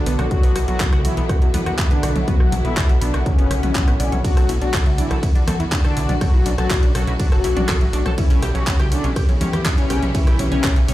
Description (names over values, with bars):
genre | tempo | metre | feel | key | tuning
melodic techno | 122 BPM | 4/4 | straight | B minor | A4 = 440 Hz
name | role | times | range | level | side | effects
analog synth brass | melody | 0.0-10.9 s | C#3 to F#4 | -25 LUFS | left 2 dB | chorus, vintage 12-bit sampler grit, sidechain pumping, digital delay
rich studio string section | sustained chords | 0.0-10.9 s | A2 to G4 | -30 LUFS | left 1 dB | sidechain pumping
tight sequenced synth | arpeggios | 0.0-10.9 s | F#3 to A5 | -29 LUFS | right 1 dB | chorus, cassette tape, sidechain pumping, ping-pong delay
plucky analog bass | bass | 0.0-10.9 s | F#1 to E2 | -22 LUFS | equal | sidechain pumping
deep dark ambient pad | texture | 0.0-10.9 s | A4 to D6 | -32 LUFS | left 2 dB | chorus, built-in reverb, sidechain pumping
deep house drum kit | drums | 0.1-10.9 s | handclaps, hi-hat, ride cymbal, rim click, toms | -26 LUFS | equal | studio reverb
electronic kick drum | drums | 0.3-10.7 s | none | -18 LUFS | equal | studio reverb
room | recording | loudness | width
little or no reverb | played on a big sound system in a bare room, large studio reverb | -16 LUFS | side -15 dB against mid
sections
0.0-10.9 A section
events
none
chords
0.0 Bm; 8.2 C#dim/B